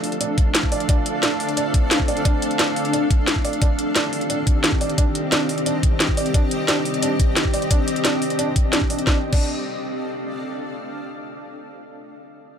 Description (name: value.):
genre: dark technical drum and bass.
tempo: 176 BPM.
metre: 4/4.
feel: straight.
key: D phrygian.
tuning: A4 = 439 Hz.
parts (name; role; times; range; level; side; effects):
metallic inharmonic drone; sustained chords; 0.0-9.2 s; Eb3 to A4; -28 LUFS; equal; chorus, built-in reverb, sidechain pumping.
drum and bass drum kit; drums; 0.0-9.4 s; crash cymbal, hi-hat, snare drum; -22 LUFS; equal; none.
granular cloud pad; texture; 0.0-10.4 s; C4 to F5; -26 LUFS; left 1 dB; built-in reverb, sidechain pumping.
felt-muted upright piano; arpeggios; 0.2-9.5 s; D4 to D5; -27 LUFS; right 3 dB; sidechain pumping, low-pass filter, ping-pong delay.
electronic kick drum; drums; 0.4-9.4 s; none; -19 LUFS; equal; none.
room: light reverb, small room ambience.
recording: none.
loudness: -18 LUFS.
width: side -8 dB against mid.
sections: 0.0-9.1 A section; 9.1-10.4 B section.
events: filter sweep on synth drone 0.0-9.1.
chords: 0.0 Dm; 3.6 Cm; 9.1 Dm.